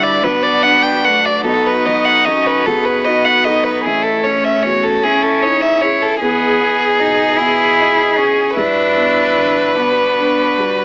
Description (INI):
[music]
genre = neoclassical piano and strings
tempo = 50 BPM (dotted quarters)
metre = 6/8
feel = rubato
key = E major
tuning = A4 = 441 Hz
[part]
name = rich violin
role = melody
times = 0.0-10.8 s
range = G#4 to G5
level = -14 LUFS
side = equal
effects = none
[part]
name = warm cello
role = second line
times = 0.0-10.8 s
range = G3 to E4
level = -17 LUFS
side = equal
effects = none
[part]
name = felt-muted upright piano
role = accompaniment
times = 0.0-10.8 s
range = A1 to D#5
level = -24 LUFS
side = equal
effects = none
[part]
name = warm viola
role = accompaniment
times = 0.0-10.8 s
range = C#4 to G#4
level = -20 LUFS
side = equal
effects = none
[part]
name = warm chamber string section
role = sustained chords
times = 0.0-10.8 s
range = E3 to D#5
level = -25 LUFS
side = equal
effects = none
[sound]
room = light reverb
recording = AM radio sound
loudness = -11 LUFS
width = side -31 dB against mid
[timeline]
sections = 0.0-10.8 A section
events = none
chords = 0.0 Gmaj7; 1.4 B7; 3.8 Amaj7; 6.2 Emaj7; 8.6 Gmaj7